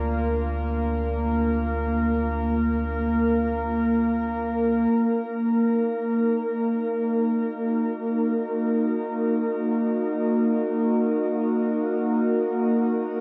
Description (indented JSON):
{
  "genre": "ambient",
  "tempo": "free time",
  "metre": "none",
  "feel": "none",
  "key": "Eb harmonic minor",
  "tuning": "A4 = 435 Hz",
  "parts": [
    { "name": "warbly tape-like pad", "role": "sustained chords", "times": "0.0-13.2 s", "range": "Bb3 to Bb4", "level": "-24 LUFS", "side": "equal", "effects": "chorus, built-in reverb, shimmer reverb" },
    { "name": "warm sub bass", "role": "bass", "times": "0.0-4.9 s", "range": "D2", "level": "-31 LUFS", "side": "equal", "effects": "none" }
  ],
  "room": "wet cathedral reverb, RT60 6.9 s",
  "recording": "none",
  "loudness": "-24 LUFS",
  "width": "mono",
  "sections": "0.0-4.9 A section; 4.9-13.2 B section",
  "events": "none",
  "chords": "0.0 Bb/D; 4.9 Ebm",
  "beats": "free time"
}